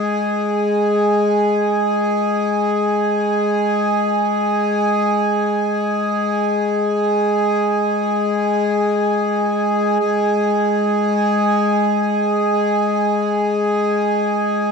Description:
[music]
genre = ambient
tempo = free time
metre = none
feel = none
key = unclear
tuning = A4 = 440 Hz
[part]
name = hand-pumped harmonium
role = solo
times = 0.0-14.7 s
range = G#3 to G#4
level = -16 LUFS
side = equal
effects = ping-pong delay
[sound]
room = wet cathedral reverb, RT60 5.5 s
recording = dark, warm production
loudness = -16 LUFS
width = side -5 dB against mid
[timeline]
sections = 0.0-10.0 A section; 10.0-14.7 B section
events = none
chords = none

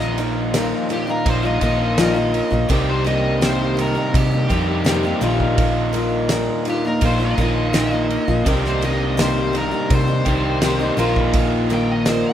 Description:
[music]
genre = folk rock and heartland rock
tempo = 83 BPM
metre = 4/4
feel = straight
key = unclear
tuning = A4 = 439 Hz
[part]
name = nasal lead guitar with a parked wah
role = melody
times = 0.0-12.3 s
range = G4 to G5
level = -27 LUFS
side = left 2 dB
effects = overdrive
[part]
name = picked steel-string acoustic guitar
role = accompaniment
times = 0.0-12.3 s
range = Bb2 to G4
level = -22 LUFS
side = left 2 dB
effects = none
[part]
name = crunchy overdriven guitar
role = riff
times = 0.0-12.3 s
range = Bb2 to G4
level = -22 LUFS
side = equal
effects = none
[part]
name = hollow-body short-scale fingered electric bass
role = bass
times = 0.0-12.2 s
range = Bb1 to C3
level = -23 LUFS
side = equal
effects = none
[part]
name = loose indie drum kit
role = drums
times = 0.0-12.2 s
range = kick drum, ride cymbal, snare drum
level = -23 LUFS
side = right 1 dB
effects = none
[part]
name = clear baby grand piano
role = accompaniment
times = 8.5-12.3 s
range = C4 to Bb4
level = -28 LUFS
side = right 2 dB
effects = none
[sound]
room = little or no reverb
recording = rough home demo mix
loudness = -16 LUFS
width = side -10 dB against mid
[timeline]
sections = 0.0-12.3 A section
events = lead electric guitar solo 0.0-12.3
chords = 0.0 Bbsus4; 2.7 Cm7; 5.2 Bbsus4; 8.5 Cm7; 11.0 Bbsus4

